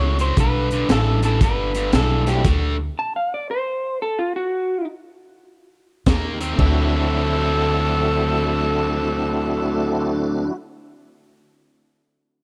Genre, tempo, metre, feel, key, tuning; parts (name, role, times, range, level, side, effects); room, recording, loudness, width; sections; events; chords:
electric blues shuffle; 116 BPM; 4/4; swing 65% on 8ths; D mixolydian; A4 = 440 Hz
electric guitar through a small old amp; melody; 0.0-4.9 s; F4 to A5; -26 LUFS; equal; vibrato effect
overdriven electric guitar; riff; 0.0-2.8, 6.1-10.5 s; G2 to E4; -27 LUFS; equal
upright bass; bass; 0.0-2.9, 6.1-10.5 s; G1 to Eb2; -24 LUFS; equal
crunchy breakbeat drum kit; drums; 0.2-2.6, 6.1-6.7 s; crash cymbal, hi-hat, kick drum, snare drum; -23 LUFS; equal
tonewheel organ; accompaniment; 2.3-2.4, 6.5-10.6 s; A3 to F#4; -27 LUFS; equal; overdrive, chorus vibrato, slow rotary speaker
growling tenor saxophone; second line; 6.6-10.5 s; A4; -26 LUFS; equal
light reverb, small room ambience; -21 LUFS; mono
0.0-6.6 A section; 6.6-10.8 B section
stop 2.4-6.1
0.4 G; 2.4 D5; 6.1 Eb5; 6.6 D9